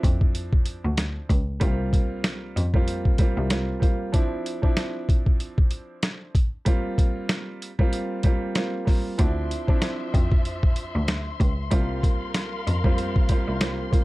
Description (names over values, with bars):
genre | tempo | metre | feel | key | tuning
hip hop, boom-bap hip-hop | 95 BPM | 4/4 | swing 57% on 16ths | D minor | A4 = 440 Hz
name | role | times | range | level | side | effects
warm upright piano | accompaniment | 0.0-14.0 s | F3 to F4 | -30 LUFS | right 2 dB | high-pass filter, low-pass filter
rich cello | bass | 0.0-3.5, 9.2-13.6 s | C2 to F2 | -28 LUFS | equal | none
boom bap sampler-style drum kit | drums | 0.0-14.0 s | hi-hat, kick drum, snare drum | -21 LUFS | equal | none
warm studio string section | sustained chords | 9.2-14.0 s | F3 to C6 | -34 LUFS | left 3 dB | high-pass filter, low-pass filter
room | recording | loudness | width
little or no reverb | dark, warm production | -22 LUFS | side -20 dB against mid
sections
0.0-9.2 A section; 9.2-14.0 A section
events
none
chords
0.0 Dm9; 1.6 C7sus4; 4.1 Dm9; 6.7 C7sus4; 9.2 Dm9; 11.7 C7sus4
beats
0.35 0.98 | 1.61 2.24 2.88 3.51 | 4.14 4.77 5.40 6.03 | 6.66 7.30 7.93 8.56 | 9.19 9.82 10.45 11.09 | 11.72 12.35 12.98 13.61